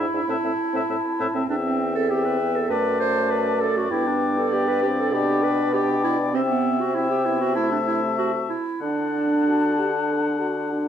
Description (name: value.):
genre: quick classical-period movement for wind quintet.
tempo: 98 BPM.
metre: 4/4.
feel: straight.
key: G major.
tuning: A4 = 442 Hz.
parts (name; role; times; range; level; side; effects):
mellow hollow concert flute; melody; 0.0-10.9 s; G5 to B5; -29 LUFS; left 10 dB; none.
clear oboe; second line; 0.0-10.9 s; D5 to F#5; -28 LUFS; left 4 dB; none.
mellow clarinet; accompaniment; 0.0-10.7 s; B3 to C5; -24 LUFS; right 4 dB; none.
warm French horn; accompaniment; 0.0-10.9 s; A3 to A4; -29 LUFS; left 1 dB; none.
mellow bassoon; bass; 0.0-10.9 s; E2 to D3; -26 LUFS; equal; none.
room: wet recital hall reverb, RT60 1.4 s.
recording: dark, warm production.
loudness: -20 LUFS.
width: side -9 dB against mid.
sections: 0.0-10.9 A section.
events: none.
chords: 0.3 Am; 1.5 C/E; 2.7 D/F#; 3.9 G; 5.1 G/B; 6.3 C; 7.6 Am/C; 8.8 D.